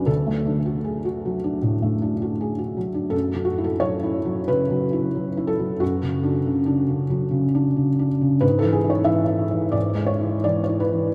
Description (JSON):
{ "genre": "neoclassical minimalist piano", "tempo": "76-93 BPM", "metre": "4/4", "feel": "rubato", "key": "F# minor from 3.1 s", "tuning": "A4 = 439 Hz", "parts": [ { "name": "felt-muted upright piano", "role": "solo", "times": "0.0-11.1 s", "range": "D2 to E5", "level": "-22 LUFS", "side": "equal", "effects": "none" } ], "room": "wet cathedral reverb, RT60 5.0 s", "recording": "in a vast, echoing space", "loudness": "-22 LUFS", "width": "mono", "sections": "0.0-3.1 A section; 3.1-11.1 B section", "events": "none", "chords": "0.1 D; 3.1 F#5; 5.8 Dmaj7/F#; 8.4 E/G#" }